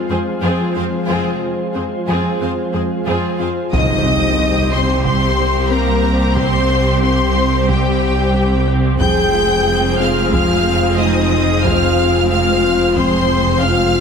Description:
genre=cinematic, hybrid orchestral and electronic film score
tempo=91 BPM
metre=4/4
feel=straight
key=F minor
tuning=A4 = 441 Hz
part: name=glassy FM pad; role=sustained chords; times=0.0-14.0 s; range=F3 to C5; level=-21 LUFS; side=left 1 dB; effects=ensemble chorus, built-in reverb
part: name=mellow French horn section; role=sustained chords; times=0.0-14.0 s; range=G3 to Ab4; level=-21 LUFS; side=left 3 dB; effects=none
part: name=clear symphonic violin section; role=second line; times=0.1-14.0 s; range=F4 to G5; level=-23 LUFS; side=left 1 dB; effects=none
part: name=rich symphonic viola section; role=accompaniment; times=0.1-14.0 s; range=C4 to Ab4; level=-24 LUFS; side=equal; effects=none
part: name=thumb-piano-like synth pluck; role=arpeggios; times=0.1-14.0 s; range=C3 to F4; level=-24 LUFS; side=left 2 dB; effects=chorus, ping-pong delay
part: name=rich symphonic cello section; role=bass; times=0.1-14.0 s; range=C2 to F2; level=-23 LUFS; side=right 3 dB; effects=none
part: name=rich symphonic double bass section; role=bass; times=1.1-14.0 s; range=F1 to C2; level=-23 LUFS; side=right 4 dB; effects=none
part: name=clear studio violin section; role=melody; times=3.7-14.0 s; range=G5 to G6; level=-21 LUFS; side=left 2 dB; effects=none
part: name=pure sine sub bass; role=bass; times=3.7-14.0 s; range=F1 to C2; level=-23 LUFS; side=equal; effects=none
part: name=taiko ensemble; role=drums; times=3.7-13.6 s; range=none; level=-25 LUFS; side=equal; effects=none
part: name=impact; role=sound effects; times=3.7-6.4 s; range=none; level=-25 LUFS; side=equal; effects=none
room=wet scoring stage reverb, RT60 1.6 s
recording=heavily compressed radio sound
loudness=-13 LUFS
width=side -6 dB against mid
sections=0.0-3.7 A section; 3.7-14.0 B section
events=impact 3.7-6.4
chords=0.0 Fm; 3.7 Cm; 9.0 Fm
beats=0.44 | 1.10 1.76 2.42 3.08 | 3.74 4.39 5.05 5.71 | 6.37 7.03 7.69 8.35 | 9.01 9.67 10.33 10.99 | 11.65 12.31 12.97 13.63

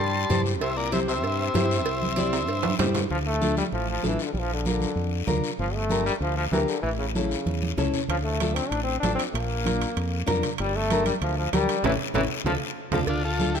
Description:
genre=latin, cumbia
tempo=192 BPM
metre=4/4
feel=straight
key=D minor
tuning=A4 = 440 Hz
part: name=combo organ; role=melody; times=0.0-2.8, 13.1-13.6 s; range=D4 to C6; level=-28 LUFS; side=left 1 dB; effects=none
part: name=clear trombone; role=second line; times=0.0-13.0 s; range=Bb2 to D4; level=-29 LUFS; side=left 2 dB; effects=none
part: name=fingered electric bass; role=bass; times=0.0-13.6 s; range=G1 to G2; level=-28 LUFS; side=equal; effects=none
part: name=nylon-string guitar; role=accompaniment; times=0.3-13.6 s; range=C#4 to D5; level=-29 LUFS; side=left 3 dB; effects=none
part: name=congas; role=percussion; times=0.3-13.6 s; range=none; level=-32 LUFS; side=right 4 dB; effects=none
part: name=cowbell and timbales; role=percussion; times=0.3-3.0, 8.1-13.2 s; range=none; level=-34 LUFS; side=right 8 dB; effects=none
part: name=guiro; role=percussion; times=0.3-13.6 s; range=none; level=-36 LUFS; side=left 8 dB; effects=none
room=light reverb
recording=close, detailed microphones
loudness=-23 LUFS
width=side -7 dB against mid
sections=0.0-3.1 A section; 3.1-13.1 B section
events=drum fill 2.3-3.1, 7.5-8.1, 12.3-13.1; trombone solo 3.1-13.1; band accent 11.8-13.1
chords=0.0 C; 3.1 Dm; 4.3 Bb; 5.6 Gm; 6.8 A; 8.1 Dm; 9.3 Bb; 10.6 Gm; 11.8 A; 12.5 Dm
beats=0.30 | 0.61 0.92 1.24 1.55 | 1.86 2.17 2.48 2.79 | 3.10 3.41 3.72 4.04 | 4.35 4.66 4.97 5.28 | 5.60 5.91 6.22 6.53 | 6.84 7.16 7.47 7.78 | 8.09 8.40 8.72 9.03 | 9.34 9.65 9.96 10.28 | 10.59 10.90 11.21 11.53 | 11.84 12.15 12.46 12.77 | 13.09 13.40

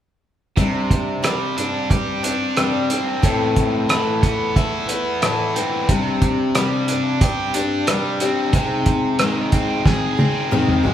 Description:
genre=folk rock and heartland rock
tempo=90 BPM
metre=4/4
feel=straight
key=C major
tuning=A4 = 441 Hz
part: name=picked twelve-string acoustic guitar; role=accompaniment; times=0.6-10.9 s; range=A2 to C5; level=-22 LUFS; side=left 3 dB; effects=none
part: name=biting overdriven guitar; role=riff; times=0.6-10.9 s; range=A2 to Ab4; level=-22 LUFS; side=right 1 dB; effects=none
part: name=cloth-damped thuddy drum kit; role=drums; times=0.6-10.9 s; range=hi-hat, kick drum, rim click, snare drum, toms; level=-20 LUFS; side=right 1 dB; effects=none
room=wet large studio reverb, RT60 1.3 s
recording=band playing live in one room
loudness=-17 LUFS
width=side -10 dB against mid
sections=0.6-10.9 A section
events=drum fill 9.9-10.9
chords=0.6 Csus2; 3.2 Amadd9; 5.9 Csus2; 8.5 Ab/C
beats=| 0.58 1.24 1.91 2.57 | 3.23 3.90 4.56 5.22 | 5.89 6.55 7.21 7.87 | 8.54 9.20 9.86 10.52

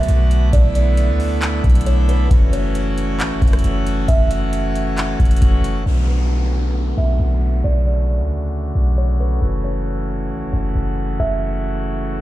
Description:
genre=hip hop, atmospheric cloud-rap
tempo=135 BPM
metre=4/4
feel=half-time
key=B minor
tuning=A4 = 440 Hz
part: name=buzzing kalimba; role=melody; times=0.0-11.6 s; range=B4 to F#5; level=-28 LUFS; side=right 4 dB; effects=low-pass filter, digital delay
part: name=pipe organ, full organ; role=sustained chords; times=0.0-12.2 s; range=C#3 to F#4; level=-24 LUFS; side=equal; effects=sidechain pumping, low-pass filter
part: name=warm 808-style bass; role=bass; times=0.0-12.2 s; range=F#1 to D2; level=-18 LUFS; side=equal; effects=none
part: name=booming analog drum machine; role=drums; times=0.0-5.7 s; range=handclaps, hi-hat, kick drum, rim click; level=-16 LUFS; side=equal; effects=none
part: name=downlifter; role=sound effects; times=5.9-9.4 s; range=none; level=-33 LUFS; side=equal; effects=none
room=little or no reverb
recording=played on a big sound system in a bare room, stone room reverb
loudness=-15 LUFS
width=side -15 dB against mid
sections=0.0-5.9 A section; 5.9-12.2 B section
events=filter sweep 5.9-12.2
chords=0.0 Bm7; 2.3 F#m7; 5.9 Bm7; 9.4 F#m7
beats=0.09 | 0.53 0.98 1.42 1.86 | 2.31 2.75 3.20 3.64 | 4.09 4.53 4.98 5.42 | 5.86 6.31 6.75 7.20 | 7.64 8.09 8.53 8.98 | 9.42 9.86 10.31 10.75 | 11.20 11.64 12.09

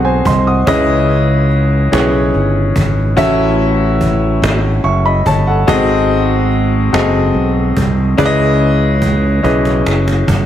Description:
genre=slow gospel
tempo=48 BPM (dotted quarters)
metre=6/8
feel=straight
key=C# minor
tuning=A4 = 440 Hz
part: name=warm concert grand piano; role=accompaniment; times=0.0-10.5 s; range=G#2 to D#6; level=-13 LUFS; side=left 1 dB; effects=none
part: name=fingered electric bass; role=bass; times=0.0-10.5 s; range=F#1 to C#2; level=-14 LUFS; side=right 1 dB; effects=none
part: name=cajon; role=drums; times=0.3-10.5 s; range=none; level=-20 LUFS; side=right 1 dB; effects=none
room=light reverb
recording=heavily compressed radio sound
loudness=-11 LUFS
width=side -11 dB against mid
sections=0.0-10.5 A section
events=drum fill 9.4-10.5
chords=0.0 G#7b9; 0.7 C#m9; 3.2 A6; 5.7 G#7b9; 8.2 C#m9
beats=| 0.67 1.92 | 3.17 4.42 | 5.68 6.93 | 8.18 9.44

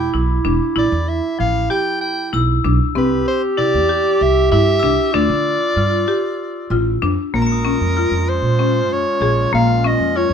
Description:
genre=contemporary instrumental, chamber music in an uneven meter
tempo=192 BPM (eighths)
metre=7/8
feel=straight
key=unclear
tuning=A4 = 440 Hz
part: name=bright soprano saxophone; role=melody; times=0.0-10.3 s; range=Bb4 to G5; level=-20 LUFS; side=equal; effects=none
part: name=dark clarinet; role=second line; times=0.0-10.3 s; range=E4 to G4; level=-21 LUFS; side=right 1 dB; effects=none
part: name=upright bass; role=bass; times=0.0-10.3 s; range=E1 to D3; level=-19 LUFS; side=right 2 dB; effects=none
part: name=glockenspiel with brass mallets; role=texture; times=0.0-9.2 s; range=Bb5 to Db7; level=-30 LUFS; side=left 9 dB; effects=none
part: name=buzzing marimba with hard mallets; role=arpeggios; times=0.1-10.3 s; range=F3 to Ab4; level=-21 LUFS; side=left 3 dB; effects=none
part: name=warm woodwind section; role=sustained chords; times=7.3-10.3 s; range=Bb2 to Db4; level=-28 LUFS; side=left 1 dB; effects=none
room=light reverb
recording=minimal, uncompressed stereo recording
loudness=-14 LUFS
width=side -7 dB against mid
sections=0.0-7.3 A section; 7.3-10.3 B section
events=none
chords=0.0 Em; 3.0 C; 5.1 Dm; 7.3 Bbm7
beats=0.15 0.46 | 0.77 1.08 1.40 1.71 2.02 2.33 2.65 | 2.96 3.27 3.58 3.90 4.21 4.52 4.83 | 5.14 5.46 5.77 6.08 6.40 6.71 7.02 | 7.33 7.65 7.96 8.27 8.59 8.90 9.21 | 9.53 9.84 10.15

